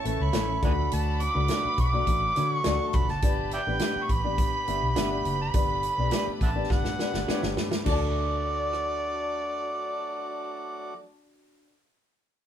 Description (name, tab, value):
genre	uptempo 1960s-style soul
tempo	104 BPM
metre	4/4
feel	straight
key	D major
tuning	A4 = 440 Hz
part	overdriven harmonica	melody	0.0-10.9 s	D5 to D6	-29 LUFS	right 2 dB	none
part	warm studio string section	second line	0.0-10.9 s	F#4 to C#6	-39 LUFS	equal	none
part	dark upright piano	accompaniment	0.0-11.7 s	A3 to E5	-33 LUFS	left 4 dB	none
part	overdriven tonewheel organ	sustained chords	0.0-10.9 s	E3 to A4	-40 LUFS	equal	none
part	vintage muted fingered electric bass	bass	0.1-11.6 s	F1 to D3	-30 LUFS	equal	none
part	natural country drum kit	drums	0.1-8.9 s	crash cymbal, hi-hat, kick drum, rim click, snare drum	-28 LUFS	equal	none
part	electric guitar through a small old amp	stabs	0.3-11.7 s	C#4 to D5	-36 LUFS	right 1 dB	none
room	wet small room ambience, RT60 0.5 s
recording	band playing live in one room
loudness	-24 LUFS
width	side -10 dB against mid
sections	0.0-7.9 A section; 7.9-10.2 B section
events	drum fill 6.7-7.9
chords	0.0 A; 0.6 D; 3.2 G; 7.9 D